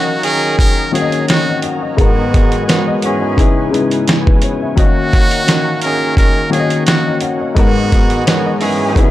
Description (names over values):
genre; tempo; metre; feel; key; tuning
hip hop, boom-bap hip-hop; 86 BPM; 4/4; swing 55% on 16ths; G# minor; A4 = 436 Hz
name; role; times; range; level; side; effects
trumpet with metal mute; melody; 0.0-7.2 s; F#4 to A#4; -18 LUFS; equal; none
dark upright piano; accompaniment; 0.0-9.1 s; G#2 to G#5; -17 LUFS; left 4 dB; none
overdriven tonewheel organ; sustained chords; 0.0-9.1 s; D#3 to A#4; -24 LUFS; right 1 dB; chorus vibrato, lush chorus
mellow horn section; stabs; 0.0-9.1 s; D#3 to G#4; -19 LUFS; right 3 dB; digital delay
dusty soul sampler-style drum kit; drums; 0.2-9.1 s; hi-hat, kick drum, snare drum; -14 LUFS; equal; none
room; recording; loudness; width
light reverb, small room reverb; dark, warm production; -11 LUFS; side -14 dB against mid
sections
0.0-9.1 A section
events
none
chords
0.0 D#m7; 2.0 G#m7; 3.4 C#m7; 4.8 D#m7; 7.6 G#m7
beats
0.59 1.29 | 1.99 2.68 3.38 4.08 | 4.78 5.47 6.17 6.87 | 7.57 8.27 8.96